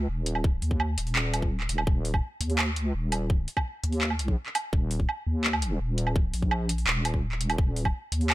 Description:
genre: half-time drum and bass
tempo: 168 BPM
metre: 4/4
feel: half-time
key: unclear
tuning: A4 = 440 Hz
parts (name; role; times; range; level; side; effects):
- deep soft wobble bass; bass; 0.0-8.3 s; Eb1 to Eb2; -27 LUFS; equal; chorus
- drum and bass drum kit; drums; 0.3-8.3 s; handclaps, hi-hat, woodblock; -29 LUFS; right 2 dB; none
- electronic kick drum; drums; 0.4-7.9 s; none; -26 LUFS; equal; none
room: little or no reverb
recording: none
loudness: -25 LUFS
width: side -16 dB against mid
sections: 0.0-8.3 A section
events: none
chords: none

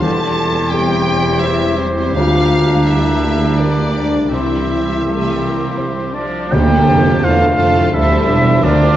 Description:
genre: cinematic, emotional film score for orchestra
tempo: 84 BPM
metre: 3/4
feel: rubato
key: D minor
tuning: A4 = 444 Hz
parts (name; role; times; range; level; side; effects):
- warm symphonic violin section; melody; 0.0-9.0 s; C5 to A5; -23 LUFS; left 2 dB; none
- clear clarinet; second line; 0.0-6.2 s; C4 to E4; -23 LUFS; left 1 dB; none
- mellow silver concert flute; second line; 0.0-9.0 s; D5 to C6; -23 LUFS; equal; none
- warm oboe; second line; 0.0-9.0 s; G4 to G5; -23 LUFS; right 1 dB; none
- warm symphonic violin section; second line; 0.0-9.0 s; A3 to C5; -25 LUFS; left 1 dB; none
- felt-muted upright piano; accompaniment; 0.0-9.0 s; C2 to C5; -20 LUFS; left 1 dB; none
- rich symphonic viola section; accompaniment; 0.0-9.0 s; E3 to F4; -23 LUFS; right 2 dB; none
- mellow French horn section; sustained chords; 0.0-9.0 s; F3 to A4; -22 LUFS; left 2 dB; none
- rich studio cello section; bass; 0.0-9.0 s; C2 to F2; -21 LUFS; right 2 dB; none
- warm symphonic double bass section; bass; 0.0-9.0 s; E1 to D2; -21 LUFS; right 2 dB; none
- dark cor anglais; melody; 6.2-9.0 s; D4 to G4; -20 LUFS; right 2 dB; none
- tam-tam; percussion; 6.5-9.0 s; none; barely audible; none; none
- timpani; percussion; 6.5-9.0 s; D3; -21 LUFS; equal; none
room: wet scoring stage reverb, RT60 2.0 s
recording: worn, warbling old tape, cassette tape, warbly pitch drift, nothing above 8.0 kHz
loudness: -12 LUFS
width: side -12 dB against mid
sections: 0.0-6.5 A section; 6.5-9.0 B section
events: band accent 6.5-7.2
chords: 0.1 C/E; 2.2 Gm/D; 4.3 C; 6.5 Dm7

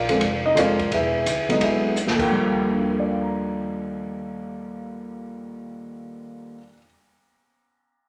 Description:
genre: jazz piano trio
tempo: 172 BPM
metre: 4/4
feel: swing 65% on 8ths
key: Eb major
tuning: A4 = 440 Hz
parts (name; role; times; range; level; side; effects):
- dark grand piano; melody; 0.0-6.8 s; Eb2 to Bb5; -25 LUFS; equal; none
- upright bass; bass; 0.0-6.6 s; E1 to Eb2; -39 LUFS; equal; none
- open jazz drum kit; drums; 0.1-2.2 s; crash cymbal, hi-hat, kick drum, ride cymbal, rim click, snare drum; -30 LUFS; equal; none
room: wet large studio reverb, RT60 1.1 s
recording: none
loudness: -23 LUFS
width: mono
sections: 0.0-2.3 A section; 2.3-5.1 B section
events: drum fill 2.0-2.3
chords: 0.0 Bb7; 0.9 E7; 2.1 Ebmaj7sus2; 2.3 Ebmaj9

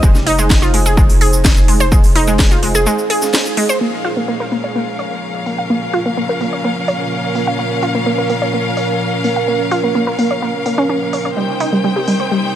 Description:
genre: melodic techno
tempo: 127 BPM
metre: 4/4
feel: straight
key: Bb dorian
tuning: A4 = 444 Hz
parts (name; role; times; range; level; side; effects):
- wide unison pluck; arpeggios; 0.0-12.4 s; G3 to F5; -18 LUFS; equal; sidechain pumping, dub echo
- round analog bass; bass; 0.0-2.9 s; F1; -16 LUFS; equal; sidechain pumping
- electronic kick drum; drums; 0.0-2.5 s; none; -12 LUFS; equal; overdrive
- techno drum kit; drums; 0.0-12.2 s; hi-hat, shaker, snare drum; -20 LUFS; equal; overdrive, low-pass filter on hats, low-pass filter on perc, low-pass filter on snare
- deep dark ambient pad; texture; 0.0-12.6 s; Db4 to G5; -22 LUFS; right 4 dB; chorus, built-in reverb, sidechain pumping
- rich studio string section; sustained chords; 3.8-12.6 s; Bb2 to G5; -20 LUFS; left 2 dB; sidechain pumping
room: light reverb, digital ambience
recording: none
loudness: -13 LUFS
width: side -11 dB against mid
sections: 0.0-3.8 A section; 3.8-12.6 B section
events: break 2.9-3.8; band accent 3.3; filter sweep on synth arpeggio sound 3.8-12.6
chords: 0.0 Fm7; 3.8 Bbm; 11.4 Cm

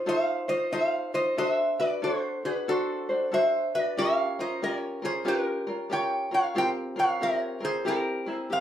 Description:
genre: hawaiian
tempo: 92 BPM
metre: 4/4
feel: swing 64% on 8ths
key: unclear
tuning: A4 = 441 Hz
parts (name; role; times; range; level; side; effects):
- tenor ukulele; accompaniment; 0.0-8.6 s; C4 to C5; -29 LUFS; equal; none
- metal-body resonator slide guitar; melody; 0.1-8.6 s; F#4 to G5; -27 LUFS; equal; none
room: wet studio ambience, RT60 0.5 s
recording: heard from further back in the room, lossy compression artefacts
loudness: -25 LUFS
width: side -10 dB against mid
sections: 0.0-8.6 A section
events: none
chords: 0.0 F7; 1.4 D7; 4.0 Gm7b5; 6.6 C7sus4; 7.9 C7

